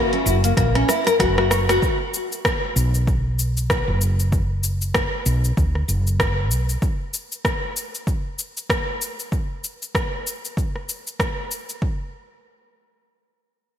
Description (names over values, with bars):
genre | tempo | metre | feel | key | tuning
organic downtempo | 96 BPM | 4/4 | swing 58% on 16ths | unclear | A4 = 439 Hz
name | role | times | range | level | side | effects
nylon-string guitar | arpeggios | 0.0-1.8 s | A#3 to C#5 | -21 LUFS | left 2 dB | wide subtle chorus, ping-pong delay
woody fretless electric bass | bass | 0.0-6.8 s | F#1 to D2 | -20 LUFS | equal | lush chorus, sidechain pumping
deep house drum kit | drums | 0.1-11.8 s | cabasa, hi-hat, rim click | -24 LUFS | equal | overdrive, small room reverb, gated reverb
electronic kick drum | drums | 0.6-12.0 s | none | -24 LUFS | equal | overdrive, small room reverb
room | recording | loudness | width
light reverb | bright 1980s-style digital production | -19 LUFS | side -9 dB against mid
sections
0.0-1.8 A section; 1.8-11.8 B section; 11.8-13.8 C section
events
drum fill 0.6-1.8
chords
0.0 F#7; 1.8 B5; 6.8 N.C.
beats
0.57 1.20 | 1.82 2.45 3.07 3.70 | 4.32 4.95 5.57 6.20 | 6.82 7.45 8.07 8.70 | 9.32 9.95 10.57 11.20 | 11.82